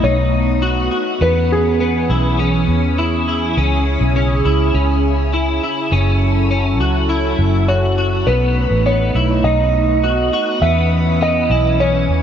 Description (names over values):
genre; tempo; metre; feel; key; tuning
dream pop; 102 BPM; 4/4; straight; E major; A4 = 440 Hz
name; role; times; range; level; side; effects
felt-muted upright piano; melody; 0.0-2.7, 7.7-12.2 s; G#4 to E5; -20 LUFS; right 1 dB; tape echo
phased analog pad; sustained chords; 0.0-12.2 s; C#3 to G#5; -20 LUFS; right 1 dB; phaser, chorus
electric guitar at the edge of break-up; arpeggios; 0.0-12.2 s; B3 to F#4; -20 LUFS; left 3 dB; ensemble chorus, tape echo
vintage muted fingered electric bass; bass; 0.0-12.2 s; F#1 to E2; -17 LUFS; equal; none
room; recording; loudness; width
moderate shimmer reverb, RT60 4.3 s; nothing above 7.8 kHz; -13 LUFS; side -8 dB against mid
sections
0.0-12.2 A section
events
none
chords
0.0 B7; 1.2 E6; 5.9 F#m7; 8.3 B7; 10.6 E6